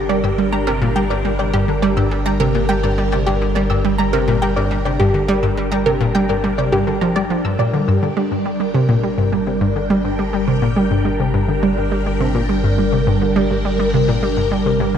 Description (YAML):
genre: ambient, sequencer-driven space music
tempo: 104 BPM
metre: 4/4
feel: straight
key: G minor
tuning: A4 = 438 Hz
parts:
  - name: phased string machine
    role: sustained chords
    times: 0.0-15.0 s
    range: G3 to G5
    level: -21 LUFS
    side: left 1 dB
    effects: ensemble chorus, phaser, shimmer reverb
  - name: analog pluck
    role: riff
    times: 0.0-15.0 s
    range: G2 to G3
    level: -18 LUFS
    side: equal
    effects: chorus, ping-pong delay, shimmer reverb
  - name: round analog bass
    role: bass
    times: 0.0-15.0 s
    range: G1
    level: -24 LUFS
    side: equal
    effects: none
  - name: wide unison pluck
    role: arpeggios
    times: 0.1-7.7 s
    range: G4 to E6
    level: -23 LUFS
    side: moving between left 3 dB and right 4 dB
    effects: auto-pan, ping-pong delay, shimmer reverb
room: wet spring reverb, RT60 2.5 s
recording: echo-heavy mix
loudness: -15 LUFS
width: side -8 dB against mid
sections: 0.0-7.9 A section; 7.9-15.0 B section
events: none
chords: 0.0 Gm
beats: 0.38 | 0.96 1.53 2.11 2.69 | 3.26 3.84 4.42 5.00 | 5.57 6.15 6.73 7.30 | 7.88 8.46 9.03 9.61 | 10.19 10.76 11.34 11.92 | 12.49 13.07 13.65 14.23 | 14.80